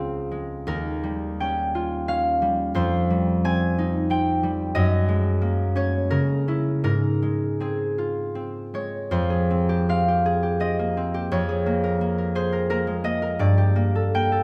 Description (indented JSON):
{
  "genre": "classical, solo harp piece",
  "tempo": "75-94 BPM",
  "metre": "3/4",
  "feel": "rubato",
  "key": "Ab major, F minor from 9.1 s",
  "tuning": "A4 = 441 Hz",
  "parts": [
    { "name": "concert harp", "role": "solo", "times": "0.0-14.4 s", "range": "Db2 to Ab5", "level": "-23 LUFS", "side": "equal", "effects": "none" }
  ],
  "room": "moderate stone room reverb, RT60 1.3 s",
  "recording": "none",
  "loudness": "-23 LUFS",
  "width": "mono",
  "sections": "0.0-9.1 A section; 9.1-14.4 B section",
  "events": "none",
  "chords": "0.0 Dbmaj7; 0.7 Eb9; 2.8 Fm9; 4.8 Gbadd9; 6.1 Dbm6; 6.8 Ab6; 9.1 Fmadd9; 11.3 Bbm7/F; 13.4 Gmadd9"
}